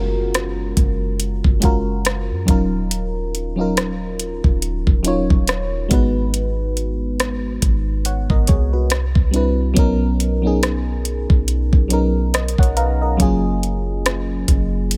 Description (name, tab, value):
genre	contemporary R&B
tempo	70 BPM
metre	4/4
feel	swing 58% on 16ths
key	F# major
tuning	A4 = 439 Hz
part	mellow FM electric piano	accompaniment	0.0-15.0 s	F#3 to A#5	-24 LUFS	equal	chorus, phaser
part	warm 808-style bass	bass	0.0-15.0 s	D#1 to F#2	-23 LUFS	equal	none
part	impact	sound effects	0.0-2.9 s	none	-40 LUFS	equal	none
part	smooth R&B drum kit	drums	0.3-15.0 s	hi-hat, kick drum, rim click	-20 LUFS	equal	none
room	little or no reverb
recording	none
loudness	-19 LUFS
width	mono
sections	0.0-15.0 A section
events	impact 0.0-2.9; FM electric piano fill 11.9-13.2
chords	0.0 F#maj9; 2.5 D#m9; 5.9 G#m7; 8.9 Cmaj9; 9.8 Bmaj9; 13.2 F#maj9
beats	0.34 1.20 2.05 | 2.91 3.77 4.63 5.48 | 6.34 7.20 8.05 8.91 | 9.77 10.63 11.48 12.34 | 13.20 14.05 14.91